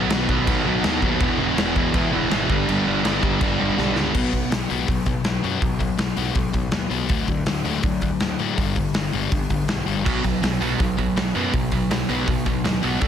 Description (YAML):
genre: punk rock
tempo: 162 BPM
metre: 4/4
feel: straight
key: unclear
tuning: A4 = 440 Hz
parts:
  - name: fuzz guitar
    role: riff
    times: 0.0-4.4 s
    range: E2 to B3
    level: -28 LUFS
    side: left 1 dB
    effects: distortion
  - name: sludgy distorted guitar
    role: riff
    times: 0.0-13.1 s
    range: G2 to E4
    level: -24 LUFS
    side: left 8 dB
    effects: overdrive
  - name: sludgy distorted guitar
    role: riff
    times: 0.0-4.5, 10.1-13.1 s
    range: E2 to D4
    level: -24 LUFS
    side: right 10 dB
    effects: overdrive
  - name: fuzz picked electric bass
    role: bass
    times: 0.0-13.1 s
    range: E1 to A2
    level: -28 LUFS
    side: equal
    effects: overdrive
  - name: big rock drum kit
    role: drums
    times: 0.1-13.1 s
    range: crash cymbal, hi-hat, kick drum, snare drum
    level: -24 LUFS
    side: equal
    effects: none
room: little or no reverb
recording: dense, heavily limited modern master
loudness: -19 LUFS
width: side -9 dB against mid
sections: 0.0-4.1 A section; 4.1-13.1 B section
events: drum fill 3.8-4.1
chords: 0.0 B; 1.2 E; 2.5 G; 4.1 B5; 7.1 D; 8.6 G5; 10.1 B5